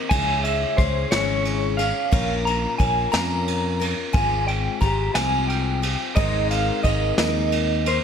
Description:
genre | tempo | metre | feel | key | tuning
indie folk with a building arrangement | 59 BPM (dotted quarters) | 6/8 | straight | Ab major | A4 = 441 Hz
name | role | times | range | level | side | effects
picked twelve-string acoustic guitar | accompaniment | 0.0-8.0 s | Bb2 to Bb4 | -27 LUFS | left 8 dB | none
electric guitar through a small old amp | melody | 0.1-8.0 s | C5 to Bb5 | -24 LUFS | right 1 dB | tremolo
fingered electric bass | bass | 0.1-8.0 s | Ab1 to F2 | -26 LUFS | equal | none
vintage brush drum kit | drums | 0.1-8.0 s | kick drum, ride cymbal, snare drum | -25 LUFS | right 1 dB | none
room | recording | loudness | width
light reverb | none | -19 LUFS | side -7 dB against mid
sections
0.0-8.0 A section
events
none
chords
0.1 Dbm; 2.1 Bbm; 4.1 Fmadd9/Ab; 6.2 Abadd9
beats
| 0.11 1.11 | 2.12 3.13 | 4.14 5.15 | 6.17 7.18

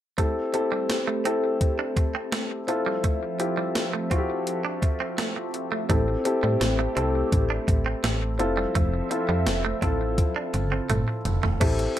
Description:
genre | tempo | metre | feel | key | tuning
1980s-style pop | 84 BPM | 4/4 | straight | unclear | A4 = 440 Hz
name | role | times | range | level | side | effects
dark baby grand piano | accompaniment | 0.2-12.0 s | C4 to A4 | -27 LUFS | left 2 dB | none
phased analog pad | sustained chords | 0.7-11.6 s | F3 to E5 | -33 LUFS | equal | phaser, chorus
direct-recorded clean electric guitar | riff | 0.2-12.0 s | G3 to D4 | -32 LUFS | right 6 dB | lush chorus, ping-pong delay
gated 80s digital drum machine | drums | 0.2-12.0 s | crash cymbal, hi-hat, kick drum, snare drum, toms | -25 LUFS | equal | gated reverb, gated reverb snare
slap-like FM bass | bass | 5.9-11.9 s | E1 to A2 | -26 LUFS | equal | none
room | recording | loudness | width
moderate small room reverb, RT60 0.5 s | none | -23 LUFS | side -12 dB against mid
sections
0.2-11.6 A section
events
drum fill 10.2-11.6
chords
0.2 Am7; 2.7 Fmaj7; 5.9 Am7; 8.4 Fmaj7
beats
| 0.18 0.90 1.61 2.32 | 3.04 3.75 4.47 5.18 | 5.90 6.61 7.32 8.04 | 8.75 9.47 10.18 10.90 | 11.61

